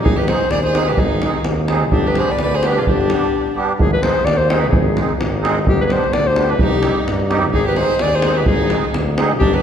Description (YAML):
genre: balkan folk, Balkan wedding band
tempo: 128 BPM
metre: 2/4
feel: swing 54% on 16ths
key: unclear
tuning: A4 = 439 Hz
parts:
  - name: warm clarinet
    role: melody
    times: 0.0-9.6 s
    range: G4 to D5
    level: -19 LUFS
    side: left 3 dB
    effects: none
  - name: clear violin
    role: second line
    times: 0.0-3.5, 6.6-9.6 s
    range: D4 to B4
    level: -24 LUFS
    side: right 3 dB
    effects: none
  - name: clear tuba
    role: bass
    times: 0.0-9.6 s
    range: G1 to G2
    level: -21 LUFS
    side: equal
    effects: none
  - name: davul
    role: percussion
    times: 0.1-9.5 s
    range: none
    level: -19 LUFS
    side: right 1 dB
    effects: none
  - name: musette accordion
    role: accompaniment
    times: 0.3-9.3 s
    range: G3 to Ab4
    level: -23 LUFS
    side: right 3 dB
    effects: none
room: wet concert hall reverb, RT60 2.0 s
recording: heard from further back in the room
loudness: -14 LUFS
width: side -8 dB against mid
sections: 0.0-3.8 A section; 3.8-9.6 A section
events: break 3.3-3.8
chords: 0.0 Ab; 1.9 G; 3.8 Ab; 5.7 G; 6.6 Cm; 7.5 Ab